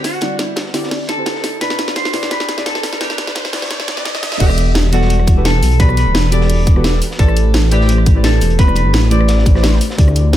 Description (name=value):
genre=liquid drum and bass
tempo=172 BPM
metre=4/4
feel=straight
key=E minor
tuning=A4 = 440 Hz
part: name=electric guitar at the edge of break-up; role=melody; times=0.0-9.8 s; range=F#4 to D5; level=-22 LUFS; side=equal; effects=digital delay
part: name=deep mellow chord stab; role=accompaniment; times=0.0-10.4 s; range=C3 to F#5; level=-22 LUFS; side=equal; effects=chorus
part: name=crunchy breakbeat drum kit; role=drums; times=0.0-10.4 s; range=hi-hat, snare drum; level=-30 LUFS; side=equal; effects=none
part: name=garage drum kit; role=drums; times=0.0-10.4 s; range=cabasa, crash cymbal, hi-hat, rim click, snare drum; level=-20 LUFS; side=equal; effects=none
part: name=riser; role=sound effects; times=0.7-4.4 s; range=none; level=-26 LUFS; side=right 2 dB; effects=none
part: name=dark detuned saw bass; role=bass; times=4.4-10.4 s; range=D1 to D2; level=-13 LUFS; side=equal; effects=tube saturation
part: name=electronic kick drum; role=drums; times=4.4-10.1 s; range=none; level=-11 LUFS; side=equal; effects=none
room=digital ambience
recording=high-pass filter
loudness=-12 LUFS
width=side -12 dB against mid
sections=0.0-4.4 A section; 4.4-10.4 B section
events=build-up 0.0-4.4; drum fill 0.0-4.4; filter sweep 0.0-4.4; riser 0.7-4.4; drop 4.4-10.4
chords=0.0 D9sus4; 1.6 Cmaj7; 4.4 Em11; 7.0 Am11; 9.8 D9sus4